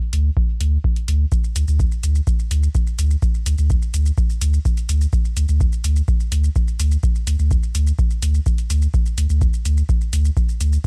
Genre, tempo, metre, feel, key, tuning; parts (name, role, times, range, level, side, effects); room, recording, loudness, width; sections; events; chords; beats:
dub techno; 126 BPM; 4/4; straight; A4 = 440 Hz
warm sub bass; bass; 0.1-10.8 s; D2; -19 LUFS; equal; sidechain pumping
electronic hi-hat and shaker; drums; 0.1-10.9 s; -33 LUFS; equal
electronic kick drum; drums; 0.4-10.9 s; -22 LUFS; equal
little or no reverb; dry, gritty hardware recording, cassette tape; -19 LUFS; mono
0.0-10.9 A section
0.37 0.84 | 1.32 1.80 2.27 2.75 | 3.23 3.70 4.18 4.65 | 5.13 5.61 6.08 6.56 | 7.03 7.51 7.99 8.46 | 8.94 9.41 9.89 10.37 | 10.84